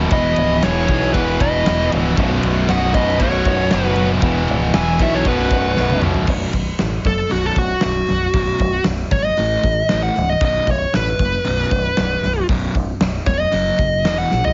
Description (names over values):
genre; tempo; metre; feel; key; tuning
hard rock; 116 BPM; 4/4; straight; B mixolydian; A4 = 438 Hz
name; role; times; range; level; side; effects
tonewheel organ; sustained chords; 0.0-6.3 s; E3 to C#5; -34 LUFS; equal; none
heavy high-gain guitar; riff; 0.0-6.3 s; B1 to E3; -28 LUFS; equal; distortion
high-gain distorted guitar; riff; 0.0-6.3 s; B1 to E3; -27 LUFS; equal; distortion
overdriven semi-hollow guitar; riff; 0.0-14.5 s; B1 to A3; -25 LUFS; equal; tremolo
fingered electric bass; bass; 0.0-14.5 s; B0 to B1; -24 LUFS; equal; none
smooth overdriven lead guitar; melody; 0.1-14.5 s; F#4 to G#5; -22 LUFS; equal; slapback echo
octave-fuzz lead guitar; second line; 0.1-6.0 s; F#4 to E5; -30 LUFS; equal; distortion
big rock drum kit; drums; 0.1-14.5 s; crash cymbal, hi-hat, kick drum, ride cymbal, snare drum, toms; -24 LUFS; equal; none
room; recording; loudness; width
studio reverb; heavily compressed radio sound, multiband compression, nothing above 7.5 kHz; -18 LUFS; mono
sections
0.0-6.3 A section; 6.3-14.5 B section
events
drum fill 5.8-6.3, 14.3; lead electric guitar solo 6.3-14.5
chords
0.1 E; 2.2 B5; 4.2 E5; 5.3 B5; 9.4 A5; 10.4 B5; 13.5 F#5